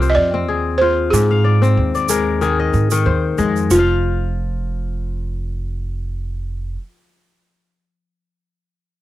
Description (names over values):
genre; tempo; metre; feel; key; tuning
west african traditional, West African string and xylophone music; 93 BPM; 4/4; swing 54% on 16ths; unclear; A4 = 442 Hz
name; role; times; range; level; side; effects
balafon; melody; 0.0-6.8 s; F4 to Eb5; -17 LUFS; right 2 dB; none
kora; arpeggios; 0.0-6.9 s; Ab2 to F5; -19 LUFS; left 6 dB; none
upright bass; bass; 0.0-6.8 s; F1 to Ab2; -19 LUFS; right 1 dB; none
egg shaker; percussion; 0.0-4.0 s; none; -26 LUFS; right 11 dB; none
room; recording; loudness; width
little or no reverb; home recording on cassette; -15 LUFS; side -14 dB against mid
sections
0.0-3.7 A section; 3.7-6.3 B section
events
none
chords
0.0 Fm; 1.1 Ab; 3.7 Ebsus2/F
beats
0.48 | 1.13 1.77 2.42 3.06 | 3.71 4.35 4.99 5.64